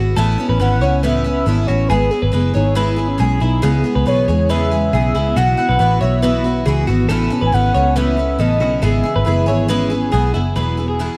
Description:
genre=indie pop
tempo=139 BPM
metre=4/4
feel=straight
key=E major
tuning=A4 = 440 Hz
part: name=picked twelve-string acoustic guitar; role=accompaniment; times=0.0-11.2 s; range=E2 to G#4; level=-23 LUFS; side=equal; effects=none
part: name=twelve-string electric guitar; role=arpeggios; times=0.0-11.2 s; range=E4 to C#5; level=-25 LUFS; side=equal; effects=spring reverb
part: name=vintage muted picked electric bass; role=bass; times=0.0-11.1 s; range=E1 to E2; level=-20 LUFS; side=equal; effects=none
part: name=warm velvety synth lead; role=melody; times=0.6-10.1 s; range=G#4 to G#5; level=-22 LUFS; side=equal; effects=chorus
part: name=dark bass clarinet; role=second line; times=2.5-3.9, 9.3-10.6 s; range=B3 to E4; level=-27 LUFS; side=equal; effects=none
part: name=soft string machine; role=sustained chords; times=4.3-10.5 s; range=C#3 to A4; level=-28 LUFS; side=equal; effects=ensemble chorus
room=light reverb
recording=dry, close 1970s-style studio recording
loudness=-16 LUFS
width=mono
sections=0.0-10.6 A section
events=none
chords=0.0 Aadd9; 1.9 E; 3.6 C#m7; 5.4 Aadd9; 8.8 E; 10.6 Eadd9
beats=| 0.17 0.60 1.03 1.47 | 1.90 2.33 2.76 3.20 | 3.63 4.06 4.49 4.93 | 5.36 5.79 6.23 6.66 | 7.09 7.53 7.96 8.39 | 8.82 9.26 9.69 10.13 | 10.56 10.99

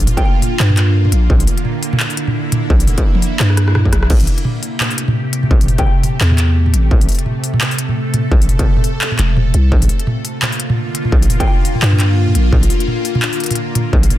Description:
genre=half-time drum and bass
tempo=171 BPM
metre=4/4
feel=swing 58% on 16ths, half-time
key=A phrygian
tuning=A4 = 440 Hz
part: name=bowed-like drone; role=sustained chords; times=0.0-14.2 s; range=C3 to A4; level=-21 LUFS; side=equal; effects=built-in reverb, phaser, sidechain pumping
part: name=growling 808-style bass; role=bass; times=0.0-14.1 s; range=E1 to G2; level=-12 LUFS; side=equal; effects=none
part: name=industrial drum kit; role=drums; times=0.0-14.2 s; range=crash cymbal, handclaps, hi-hat, rim click, toms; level=-19 LUFS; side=equal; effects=none
part: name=soft synth bell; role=melody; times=0.2-0.3, 5.8-5.9, 11.4-11.5 s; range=G5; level=-28 LUFS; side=left 1 dB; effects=chorus, phaser, dub echo
part: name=electronic kick drum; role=drums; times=0.2-14.0 s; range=none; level=-14 LUFS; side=equal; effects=distortion
room=light reverb, digital ambience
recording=dense, heavily limited modern master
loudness=-12 LUFS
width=side -14 dB against mid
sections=0.0-4.1 A section; 4.1-14.2 A section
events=drop 0.0-4.1, 4.1-14.2; drum fill 3.4-4.1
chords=0.0 Bb; 4.1 Am7; 9.7 Bb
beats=0.25 0.60 0.95 | 1.30 1.65 2.00 2.35 | 2.70 3.05 3.40 3.75 | 4.11 4.46 4.81 5.16 | 5.51 5.86 6.21 6.56 | 6.91 7.26 7.61 7.96 | 8.32 8.67 9.02 9.37 | 9.72 10.07 10.42 10.77 | 11.12 11.47 11.82 12.18 | 12.53 12.88 13.23 13.58 | 13.93

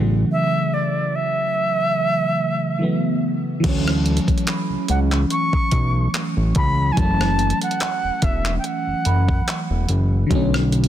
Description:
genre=contemporary R&B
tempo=72 BPM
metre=4/4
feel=swing 54% on 16ths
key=unclear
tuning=A4 = 440 Hz
part: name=FM electric piano with soft pad layer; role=accompaniment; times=0.0-10.9 s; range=C#3 to C#4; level=-22 LUFS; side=equal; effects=chorus
part: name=fat analog bass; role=bass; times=0.0-10.9 s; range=E1 to D2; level=-20 LUFS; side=equal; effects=none
part: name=reedy jazz flute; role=melody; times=0.3-9.9 s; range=D5 to C#6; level=-23 LUFS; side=right 1 dB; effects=digital delay
part: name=crisp 8-bit digital drum machine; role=drums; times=3.6-10.9 s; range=crash cymbal, handclaps, hi-hat, kick drum, rim click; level=-23 LUFS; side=equal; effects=overdrive
part: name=celesta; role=texture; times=4.5-10.3 s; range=A5 to B5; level=-36 LUFS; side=right 7 dB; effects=stereo widening, digital delay
room=light reverb, digital ambience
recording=dense, heavily limited modern master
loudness=-18 LUFS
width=side -11 dB against mid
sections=0.0-3.6 A section; 3.6-10.9 B section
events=break 0.3-3.6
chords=0.0 F#m7/A; 3.6 Dmaj7; 7.0 F#m7; 10.3 Bm9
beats=| 0.31 1.14 1.97 2.81 | 3.64 4.47 5.31 6.14 | 6.97 7.81 8.64 9.47 | 10.31

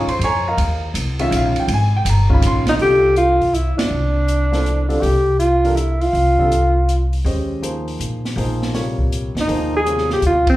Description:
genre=modal jazz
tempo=162 BPM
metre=3/4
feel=swing 66% on 8ths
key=unclear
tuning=A4 = 438 Hz
part: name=warm grand piano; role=accompaniment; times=0.0-10.4 s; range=C3 to Db6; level=-22 LUFS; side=equal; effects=slapback echo
part: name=upright bass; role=bass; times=0.0-10.6 s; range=G1 to Bb2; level=-19 LUFS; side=equal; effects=none
part: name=open jazz drum kit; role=drums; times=0.1-10.5 s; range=hi-hat, kick drum, ride cymbal, snare drum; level=-24 LUFS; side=equal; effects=none
part: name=dark alto saxophone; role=melody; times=2.7-7.1, 9.4-10.6 s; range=C4 to Ab4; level=-16 LUFS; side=equal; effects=slapback echo
room=moderate club reverb, RT60 0.6 s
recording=live gig heard through the venue's PA, club reverb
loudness=-15 LUFS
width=side -16 dB against mid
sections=0.0-2.8 A section; 2.8-10.6 B section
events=band accent 3.7, 10.4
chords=0.0 Eb9sus4; 2.8 Csus4; 7.3 Eb9sus4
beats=0.20 | 0.57 0.94 1.31 | 1.68 2.05 2.42 | 2.79 3.17 3.54 | 3.91 4.28 4.65 | 5.02 5.39 5.77 | 6.14 6.51 6.88 | 7.25 7.62 8.00 | 8.37 8.74 9.11 | 9.48 9.85 10.22

